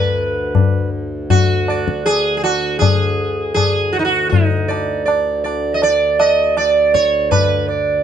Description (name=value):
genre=indian classical, Hindustani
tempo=80 BPM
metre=4/4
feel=straight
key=D raga marwa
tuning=A4 = 440 Hz
part: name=sitar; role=melody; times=0.0-8.0 s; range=Eb4 to Eb5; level=-16 LUFS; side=right 3 dB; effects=none
part: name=hand-pumped harmonium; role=drone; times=0.0-8.0 s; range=D2 to D3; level=-25 LUFS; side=equal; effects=none
part: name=tabla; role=percussion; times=0.5-7.6 s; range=none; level=-18 LUFS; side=left 3 dB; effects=none
room=moderate studio reverb, RT60 0.6 s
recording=dark, warm production, nothing above 10.3 kHz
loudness=-14 LUFS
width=side -9 dB against mid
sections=0.0-8.0 A section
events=none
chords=none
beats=0.54 1.30 2.06 | 2.81 3.57 4.32 5.07 | 5.82 6.57 7.32